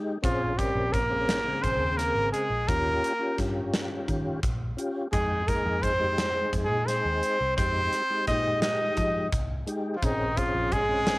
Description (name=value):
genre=progressive instrumental, band music in an uneven meter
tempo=172 BPM (eighths)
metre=7/8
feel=straight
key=F minor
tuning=A4 = 441 Hz
part: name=tonewheel organ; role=accompaniment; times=0.0-11.2 s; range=Db3 to G5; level=-32 LUFS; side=left 1 dB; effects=chorus vibrato, slow rotary speaker, cassette tape
part: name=bright trumpet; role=melody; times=0.2-11.2 s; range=Eb4 to Eb5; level=-27 LUFS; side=equal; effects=none
part: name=bright alto saxophone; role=second line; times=0.2-11.2 s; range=Eb3 to Eb4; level=-34 LUFS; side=right 1 dB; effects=cassette tape, tape echo
part: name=vintage muted picked electric bass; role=bass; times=0.2-11.2 s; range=Ab1 to F3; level=-33 LUFS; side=equal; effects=none
part: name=gated 80s drum kit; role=drums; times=0.2-11.2 s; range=hi-hat, kick drum, snare drum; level=-31 LUFS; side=equal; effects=none
room=light reverb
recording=home recording on cassette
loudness=-24 LUFS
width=side -22 dB against mid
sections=0.0-11.2 A section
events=none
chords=0.2 Bbm7; 2.7 Eb7; 5.1 Fm7; 10.0 Bbm7